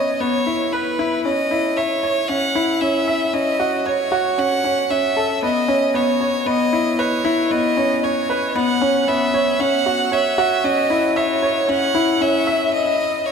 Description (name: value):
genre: electronica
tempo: 115 BPM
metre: 4/4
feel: straight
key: unclear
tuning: A4 = 438 Hz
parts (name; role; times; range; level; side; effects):
- bright violin; melody; 0.0-13.3 s; B4 to F#5; -21 LUFS; equal; none
- bright upright piano; riff; 0.0-13.3 s; B3 to E5; -18 LUFS; equal; none
room: wet huge ambient reverb, RT60 4.2 s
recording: none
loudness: -16 LUFS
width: side -6 dB against mid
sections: 0.0-13.3 A section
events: build-up 0.0-13.3; break 12.7-13.3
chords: 0.0 C#m7; 1.3 F#7(no3); 5.4 C#m7; 9.6 F#5